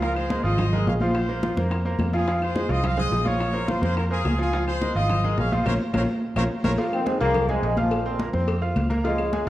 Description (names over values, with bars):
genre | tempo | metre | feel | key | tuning
latin, salsa | 213 BPM | 4/4 | straight | unclear | A4 = 439 Hz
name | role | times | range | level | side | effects
bright trumpet section | melody | 0.0-6.7 s | F4 to F5 | -29 LUFS | left 1 dB | none
bright grand piano | accompaniment | 0.0-9.5 s | F3 to F6 | -27 LUFS | equal | none
vintage muted fingered electric bass | bass | 0.0-9.5 s | Ab1 to F2 | -26 LUFS | equal | none
bongos and cowbell | percussion | 0.0-9.5 s | none | -33 LUFS | left 2 dB | none
congas | percussion | 0.0-9.5 s | none | -28 LUFS | equal | none
claves | percussion | 0.2-9.3 s | none | -43 LUFS | left 3 dB | none
mellow trombone section | melody | 6.9-9.5 s | Bb2 to C4 | -25 LUFS | left 1 dB | none
room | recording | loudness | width
wet recital hall reverb, RT60 1.6 s | worn, warbling old tape, cassette tape, warbly pitch drift | -21 LUFS | side -14 dB against mid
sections
0.0-6.8 A section; 6.8-9.5 B section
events
band accent 5.7-6.8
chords
0.0 Db6; 1.1 Bbsus2; 2.3 Fm; 3.4 Bbmadd9; 4.5 Db6; 5.7 Bbm; 6.8 Fm; 7.9 Bbmadd9